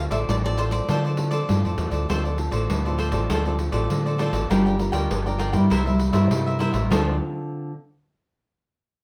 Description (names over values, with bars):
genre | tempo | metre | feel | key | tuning
samba and choro | 100 BPM | 4/4 | straight | D minor | A4 = 437 Hz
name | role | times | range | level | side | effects
cavaquinho | melody | 0.0-1.7 s | C5 to E5 | -34 LUFS | equal | none
nylon-string guitar | accompaniment | 0.0-7.7 s | G2 to Bb4 | -28 LUFS | equal | none
fingered electric bass | bass | 0.0-7.2 s | G1 to D3 | -27 LUFS | equal | none
cavaquinho | accompaniment | 0.1-7.2 s | E4 to G5 | -32 LUFS | equal | none
pandeiro | percussion | 0.1-7.1 s | none | -30 LUFS | equal | none
room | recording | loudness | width
wet studio ambience, RT60 0.5 s | band playing live in one room | -23 LUFS | mono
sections
0.0-2.1 A section; 2.1-6.9 B section; 6.9-9.0 C section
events
none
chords
0.0 Dm7; 4.5 Gm7; 5.7 C7; 6.9 Dm7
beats
0.29 0.89 1.49 | 2.10 2.70 3.30 3.90 | 4.50 5.11 5.71 6.31 | 6.91 7.51